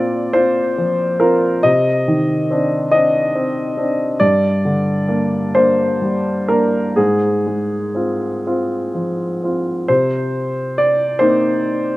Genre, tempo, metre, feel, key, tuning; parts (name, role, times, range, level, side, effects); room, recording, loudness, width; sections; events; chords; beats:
neoclassical minimalist piano; 40-48 BPM (dotted quarters); 6/8; rubato; C minor; A4 = 440 Hz
warm grand piano; solo; 0.0-12.0 s; G2 to Eb5; -15 LUFS; equal
little or no reverb; recorded outdoors, with no room sound; -14 LUFS; side -18 dB against mid
0.0-9.9 A section; 9.9-12.0 B section
0.0 Bbadd9; 1.7 Cmadd9; 4.2 Gm; 7.0 Fm/Ab; 9.9 Cm7
0.34 | 1.66 2.93 | 4.22 5.55 | 6.98 8.45 | 9.89 11.18